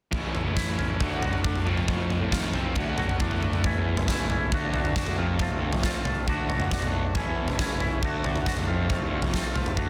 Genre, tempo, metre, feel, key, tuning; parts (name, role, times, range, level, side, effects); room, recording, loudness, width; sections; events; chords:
quiet-loud alternative rock; 137 BPM; 4/4; straight; A4 = 444 Hz
twangy electric guitar; arpeggios; 0.1-9.9 s; F2 to F#4; -34 LUFS; equal; subtle chorus
distorted electric guitar; riff; 0.1-3.6 s; A2 to F#4; -33 LUFS; equal; distortion
fuzz picked electric bass; bass; 0.1-9.9 s; F#1 to B2; -34 LUFS; equal; overdrive
huge arena drum kit; drums; 0.1-9.9 s; kick drum, snare drum, toms; -29 LUFS; equal
light reverb; dense, heavily limited modern master; -26 LUFS; mono
0.1-3.6 A section; 3.6-9.9 B section
0.1 A; 1.0 D; 1.7 F; 2.8 D; 3.6 A; 4.5 D; 5.2 F; 6.3 D; 7.2 A; 8.0 D; 8.7 F